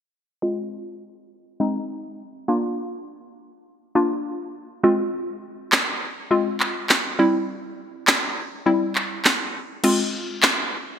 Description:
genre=dance-pop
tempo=102 BPM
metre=4/4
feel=straight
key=F dorian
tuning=A4 = 443 Hz
part: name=hollow square pluck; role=accompaniment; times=0.4-10.8 s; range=G3 to F4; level=-22 LUFS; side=left 1 dB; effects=chorus, low-pass filter
part: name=house drum kit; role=drums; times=5.7-10.6 s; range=crash cymbal, handclaps, snare drum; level=-20 LUFS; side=right 1 dB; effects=gated reverb
room=moderate plate reverb, RT60 2.7 s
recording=bright 1980s-style digital production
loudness=-20 LUFS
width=side -8 dB against mid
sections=0.4-9.8 A section; 9.8-11.0 B section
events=filter sweep on synth pluck 0.4-9.8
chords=0.4 Fm; 2.5 Bb; 4.8 Fm; 7.2 C; 9.8 Fm

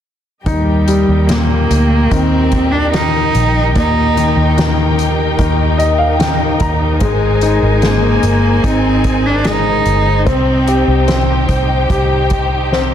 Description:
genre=pop ballad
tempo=74 BPM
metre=4/4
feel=straight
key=Eb major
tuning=A4 = 440 Hz
part: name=muted studio string section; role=sustained chords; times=0.4-12.9 s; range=Eb4 to Ab5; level=-20 LUFS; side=left 1 dB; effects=none
part: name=rich cello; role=melody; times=0.5-11.0 s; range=G3 to Eb4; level=-16 LUFS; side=right 2 dB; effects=none
part: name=clear concert grand piano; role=accompaniment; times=0.5-12.9 s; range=Bb2 to Bb5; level=-17 LUFS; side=left 4 dB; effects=none
part: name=vintage muted fingered electric bass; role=bass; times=0.5-12.9 s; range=G1 to Eb2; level=-16 LUFS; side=equal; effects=none
part: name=soft-mallet drum kit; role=drums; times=0.5-12.9 s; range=hi-hat, kick drum, snare drum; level=-20 LUFS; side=equal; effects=none
room=light reverb, studio ambience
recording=dense, heavily limited modern master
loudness=-11 LUFS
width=side -10 dB against mid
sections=0.5-12.9 A section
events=grand piano fill 5.4-7.0; drum fill 12.7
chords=0.5 Eb; 7.0 Abadd9; 10.3 Cm

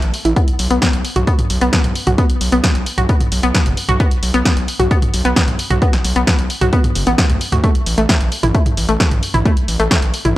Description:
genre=driving peak-time techno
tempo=132 BPM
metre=4/4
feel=straight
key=unclear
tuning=A4 = 440 Hz
part: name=gritty driven synth bass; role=bass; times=0.0-10.3 s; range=F#1 to D2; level=-19 LUFS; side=equal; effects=sidechain pumping
part: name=punchy analog drum machine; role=drums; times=0.0-10.3 s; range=hi-hat, snare drum, toms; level=-19 LUFS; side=equal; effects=sidechain pumping on hats, sidechain pumping on toms
part: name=analog pluck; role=riff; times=0.3-10.3 s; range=A3 to F#4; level=-19 LUFS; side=left 1 dB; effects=chorus, sidechain pumping, analog delay
part: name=electronic kick drum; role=drums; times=0.4-10.0 s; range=none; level=-15 LUFS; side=equal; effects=none
room=little or no reverb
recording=dry, gritty hardware recording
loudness=-13 LUFS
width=side -16 dB against mid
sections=0.0-10.4 A section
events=none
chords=0.4 N.C.; 7.6 A5

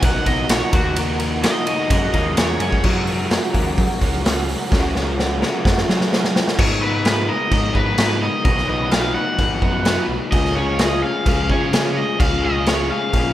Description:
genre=indie rock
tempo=128 BPM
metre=4/4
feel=straight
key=unclear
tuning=A4 = 440 Hz
part: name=cranked stack guitar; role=melody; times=0.0-2.8, 6.6-13.3 s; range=F#4 to F#5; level=-23 LUFS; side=equal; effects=overdrive, analog delay
part: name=biting overdriven guitar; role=riff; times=0.0-13.0 s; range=B2 to B4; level=-28 LUFS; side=right 6 dB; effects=ensemble chorus, analog delay
part: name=electric guitar through a small old amp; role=riff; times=0.0-13.3 s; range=G#2 to B4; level=-24 LUFS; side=left 6 dB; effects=spring reverb
part: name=growling picked electric bass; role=bass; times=0.0-13.3 s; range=G#1 to F#3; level=-24 LUFS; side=equal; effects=overdrive
part: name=raw garage drum kit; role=drums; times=0.0-13.2 s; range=crash cymbal, hi-hat, kick drum, ride cymbal, snare drum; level=-19 LUFS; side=equal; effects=none
room=light reverb, small room ambience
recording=rough home demo mix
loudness=-16 LUFS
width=side -13 dB against mid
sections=0.0-2.8 A section; 2.8-6.6 B section; 6.6-13.3 C section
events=overdriven electric guitar solo 0.0-2.8; drum fill 4.7-6.6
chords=0.0 Bmaj7; 0.7 D#m; 1.9 F#add9; 6.6 G#madd9; 8.5 B; 10.3 C#

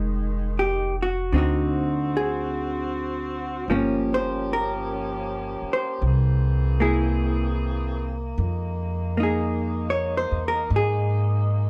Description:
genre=jazz ballad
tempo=51 BPM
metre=4/4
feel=swing 66% on 8ths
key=F minor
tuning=A4 = 438 Hz
part: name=vintage hollow-body jazz guitar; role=accompaniment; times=0.0-11.7 s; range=D3 to Db5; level=-28 LUFS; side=equal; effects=none
part: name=mellow saxophone section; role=sustained chords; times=0.0-11.7 s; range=Eb3 to G#4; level=-34 LUFS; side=equal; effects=none
part: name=upright bass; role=bass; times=0.0-11.7 s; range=F1 to Ab2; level=-28 LUFS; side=equal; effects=none
room=light reverb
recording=none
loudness=-24 LUFS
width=mono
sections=0.0-11.7 A section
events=none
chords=0.0 Fm7; 1.3 D7b9; 3.7 Gm7b5; 6.0 Caug7; 8.4 Fm7

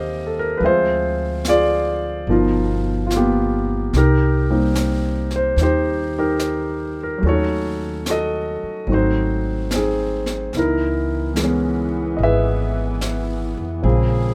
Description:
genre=jazz ballad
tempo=73 BPM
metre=4/4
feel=swing 69% on 8ths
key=unclear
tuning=A4 = 441 Hz
part: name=warm concert grand piano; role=accompaniment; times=0.0-14.3 s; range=B2 to F5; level=-22 LUFS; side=equal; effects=none
part: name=upright bass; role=bass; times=0.0-14.3 s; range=G1 to F2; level=-25 LUFS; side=equal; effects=none
part: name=jazz brush drum kit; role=drums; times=0.6-14.3 s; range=brushed snare drum, hi-hat, snare drum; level=-32 LUFS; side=equal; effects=none
part: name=mellow saxophone section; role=sustained chords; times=10.5-14.3 s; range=Fb3 to Ab4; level=-30 LUFS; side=equal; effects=none
room=little or no reverb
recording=none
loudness=-20 LUFS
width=mono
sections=0.0-14.3 A section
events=none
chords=0.0 Abmaj9 (rootless); 0.6 Dm7b5; 2.3 G7alt; 3.9 Cm7; 7.2 Ebm7b5; 8.9 Ab7b9; 10.5 Dbm9

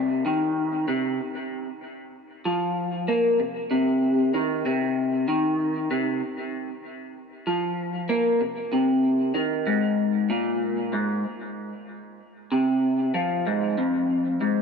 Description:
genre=rock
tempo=96 BPM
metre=4/4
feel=straight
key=C minor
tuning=A4 = 440 Hz
part: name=electric guitar through a small old amp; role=solo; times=0.0-14.6 s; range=F2 to Bb3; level=-23 LUFS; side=left 1 dB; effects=phaser, diffuse ambient delay
room=wet plate reverb, RT60 3.1 s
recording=dreamy mix soaked in reverb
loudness=-22 LUFS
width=side -5 dB against mid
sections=0.0-14.6 A section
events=none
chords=none

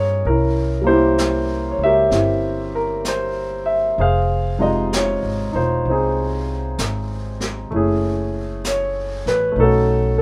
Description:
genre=jazz ballad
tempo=64 BPM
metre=4/4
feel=swing 66% on 8ths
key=unclear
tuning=A4 = 440 Hz
part: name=warm grand piano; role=accompaniment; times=0.0-10.2 s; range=C3 to F5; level=-21 LUFS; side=equal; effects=none
part: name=upright bass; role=bass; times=0.0-10.2 s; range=Fb1 to G2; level=-25 LUFS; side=equal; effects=none
part: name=jazz brush drum kit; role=drums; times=0.3-10.2 s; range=brushed snare drum, hi-hat, snare drum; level=-32 LUFS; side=equal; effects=none
room=light reverb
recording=none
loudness=-19 LUFS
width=mono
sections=0.0-10.2 A section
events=none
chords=0.2 C7b9; 4.0 Fm7; 7.7 Gbm7; 9.6 Cb9

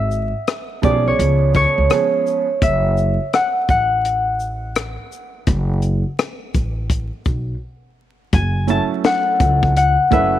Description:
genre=hip hop, jazz-hop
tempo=84 BPM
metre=4/4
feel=swing 64% on 16ths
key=F# minor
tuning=A4 = 440 Hz
part: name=concert harp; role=melody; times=0.0-10.4 s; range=C#5 to A5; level=-18 LUFS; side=left 1 dB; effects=none
part: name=upright bass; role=bass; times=0.0-10.4 s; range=F#1 to C#2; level=-19 LUFS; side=equal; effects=none
part: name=compact cocktail drum kit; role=drums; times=0.1-10.3 s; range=hi-hat, kick drum, rim click, shaker, snare drum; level=-19 LUFS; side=left 2 dB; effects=none
part: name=warm upright piano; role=accompaniment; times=0.8-2.4, 8.7-10.4 s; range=F3 to B4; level=-22 LUFS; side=right 8 dB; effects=none
room=light reverb, studio ambience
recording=1960s-style stereo, vinyl crackle, faint mains hum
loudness=-15 LUFS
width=side -12 dB against mid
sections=0.0-8.3 A section; 8.3-10.4 B section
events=break 7.6-8.3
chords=0.0 E13b9/G#; 1.2 C#7; 2.6 F#m7

